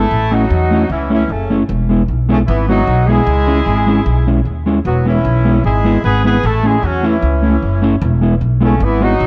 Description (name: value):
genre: ska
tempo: 152 BPM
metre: 4/4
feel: swing 55% on 8ths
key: E major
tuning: A4 = 440 Hz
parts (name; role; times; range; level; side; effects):
- warm horn section; melody; 0.0-9.3 s; C#3 to B4; -20 LUFS; equal; tape echo
- mellow electric guitar; accompaniment; 0.0-9.1 s; G#3 to E4; -19 LUFS; equal; none
- upright bass; bass; 0.0-9.3 s; E1 to E2; -17 LUFS; equal; none
room: light reverb, small room reverb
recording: cassette tape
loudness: -14 LUFS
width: mono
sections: 0.0-9.3 A section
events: none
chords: 0.1 A; 1.7 E; 3.3 C#m; 4.8 E; 6.4 A; 8.0 E